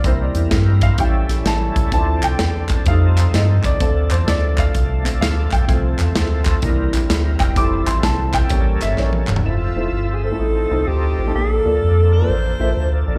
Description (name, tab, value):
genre	uptempo gospel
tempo	128 BPM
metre	4/4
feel	swing 65% on 8ths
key	F major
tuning	A4 = 440 Hz
part	warm upright piano	accompaniment	0.0-13.2 s	A2 to D6	-26 LUFS	equal	slapback echo
part	overdriven tonewheel organ	sustained chords	0.0-13.2 s	D3 to E5	-29 LUFS	equal	slow rotary speaker, chorus vibrato
part	round analog bass	bass	0.0-13.2 s	E1 to G2	-20 LUFS	equal	none
part	modern studio drum kit	drums	0.0-9.4 s	hi-hat, kick drum, snare drum, toms	-22 LUFS	equal	none
part	group handclap	percussion	2.2-9.4 s	none	-32 LUFS	equal	none
part	breathy alto saxophone	melody	9.4-13.1 s	F4 to C5	-24 LUFS	equal	slapback echo
room	small room ambience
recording	live gig heard through the venue's PA, club reverb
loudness	-17 LUFS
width	mono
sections	0.0-9.5 A section; 9.5-13.2 B section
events	upright piano solo 0.0-9.5; drum fill 9.0-9.5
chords	0.0 C7; 1.0 A7; 1.9 Dm7; 2.9 F7; 3.8 Bbmaj7/D (rootless); 5.7 F/C; 6.6 C7; 7.6 Fmaj7; 8.5 A7b9; 9.5 Fmaj7; 10.4 F7/A; 11.3 Bbmaj7